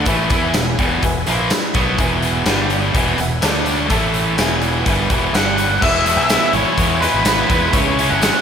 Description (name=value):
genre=classic rock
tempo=125 BPM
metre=4/4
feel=straight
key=E major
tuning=A4 = 440 Hz
part: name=bright tonewheel organ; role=sustained chords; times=0.0-8.4 s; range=B3 to A5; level=-29 LUFS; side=equal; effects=none
part: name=crunchy overdriven guitar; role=riff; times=0.0-8.4 s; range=E2 to E4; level=-21 LUFS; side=right 8 dB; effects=spring reverb
part: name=overdriven electric guitar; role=riff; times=0.0-8.4 s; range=E2 to E4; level=-21 LUFS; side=left 9 dB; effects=slapback echo
part: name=growling fingered electric bass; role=bass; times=0.0-8.3 s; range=E1 to E2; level=-23 LUFS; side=equal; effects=overdrive
part: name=warm upright piano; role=accompaniment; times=0.1-8.4 s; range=E4 to B5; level=-29 LUFS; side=left 1 dB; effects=none
part: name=big rock drum kit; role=drums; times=0.1-8.3 s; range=crash cymbal, hi-hat, kick drum, snare drum, tambourine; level=-19 LUFS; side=equal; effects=none
part: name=tambourine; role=percussion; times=0.1-8.3 s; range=none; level=-36 LUFS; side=right 8 dB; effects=none
part: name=octave-fuzz lead guitar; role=melody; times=5.3-8.4 s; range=B4 to F#5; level=-18 LUFS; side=equal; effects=distortion
part: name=picked steel-string acoustic guitar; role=accompaniment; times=5.8-8.4 s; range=E2 to E4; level=-32 LUFS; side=right 4 dB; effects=none
room=moderate lush hall reverb, RT60 1.8 s, small room ambience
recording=big arena sound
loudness=-14 LUFS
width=side -7 dB against mid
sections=0.0-5.8 A section; 5.8-8.4 B section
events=upright piano fill 4.9-5.8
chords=0.1 E; 2.5 G5; 3.0 E; 3.4 D5; 3.9 A5; 4.4 E; 5.4 G5; 5.8 E; 7.7 C#m